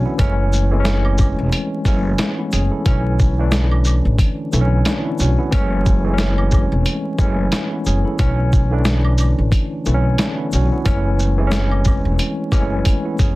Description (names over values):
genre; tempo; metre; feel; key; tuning
hip hop, boom-bap hip-hop; 90 BPM; 4/4; swing 57% on 16ths; B dorian; A4 = 440 Hz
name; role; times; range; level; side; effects
tine electric piano; accompaniment; 0.0-13.4 s; D3 to A4; -21 LUFS; equal; overdrive, medium stereo tremolo, cassette tape, high-pass filter, low-pass filter
upright bass; bass; 0.2-13.3 s; E1 to B1; -18 LUFS; equal; none
lo-fi sampler-style drum kit; drums; 0.2-13.4 s; hi-hat, kick drum, shaker, snare drum; -18 LUFS; equal; none
tube shaker and woodblock; percussion; 0.2-13.4 s; none; -34 LUFS; right 4 dB; none
room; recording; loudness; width
little or no reverb; dense, heavily limited modern master, vinyl crackle; -15 LUFS; side -19 dB against mid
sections
0.0-13.4 A section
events
drum fill 12.9-13.4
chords
0.2 F#m7; 2.9 Bm11; 5.5 F#m7; 8.2 Bm11; 10.9 F#m7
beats
| 0.19 0.86 1.53 2.19 | 2.86 3.53 4.19 4.86 | 5.53 6.19 6.86 7.53 | 8.19 8.86 9.53 10.19 | 10.86 11.53 12.19 12.86